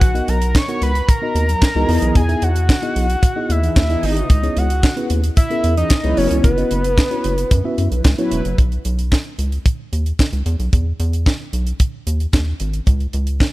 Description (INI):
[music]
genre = early-eighties boogie funk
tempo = 112 BPM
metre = 4/4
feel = straight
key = B major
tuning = A4 = 439 Hz
[part]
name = fat analog lead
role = melody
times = 0.0-8.0 s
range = B4 to C#6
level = -22 LUFS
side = equal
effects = none
[part]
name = rubbery square bass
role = bass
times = 0.0-13.4 s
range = E1 to F#2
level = -19 LUFS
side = equal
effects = none
[part]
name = tight funk drum kit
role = drums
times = 0.0-13.5 s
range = handclaps, hi-hat, kick drum, snare drum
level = -17 LUFS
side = equal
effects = none
[part]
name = mellow tine electric piano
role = accompaniment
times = 0.1-8.4 s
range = B3 to F#5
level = -24 LUFS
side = left 1 dB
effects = medium stereo tremolo
[part]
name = mellow synth brass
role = second line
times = 1.5-8.6 s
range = E3 to B4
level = -26 LUFS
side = right 1 dB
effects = chorus
[sound]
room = little or no reverb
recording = none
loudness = -15 LUFS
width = side -18 dB against mid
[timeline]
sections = 0.0-8.6 A section; 8.6-13.5 B section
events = none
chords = 0.0 Bmaj7; 1.9 Emaj7; 4.3 C#m7; 6.2 F#7sus4; 8.6 B; 10.5 Emaj7; 12.9 N.C.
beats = | 0.01 0.55 1.08 1.62 | 2.16 2.69 3.23 3.76 | 4.30 4.83 5.37 5.91 | 6.44 6.98 7.51 8.05 | 8.59 9.12 9.66 10.19 | 10.73 11.26 11.80 12.34 | 12.87 13.41